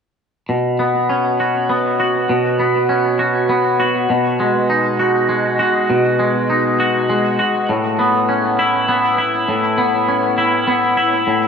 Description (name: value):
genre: rock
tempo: 100 BPM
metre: 3/4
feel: straight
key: unclear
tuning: A4 = 441 Hz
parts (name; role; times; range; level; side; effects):
- twangy electric guitar; arpeggios; 0.5-11.5 s; A2 to F#4; -14 LUFS; equal; lush chorus, tape echo
room: wet huge ambient reverb, RT60 5.3 s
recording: dark, warm production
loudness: -14 LUFS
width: side -6 dB against mid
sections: 0.5-11.5 A section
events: none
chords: 0.5 Bsus2; 4.1 G#m7/B; 7.7 Aadd9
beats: | 0.49 1.09 1.69 | 2.29 2.89 3.49 | 4.09 4.69 5.29 | 5.89 6.49 7.08 | 7.68 8.28 8.88 | 9.48 10.07 10.67 | 11.27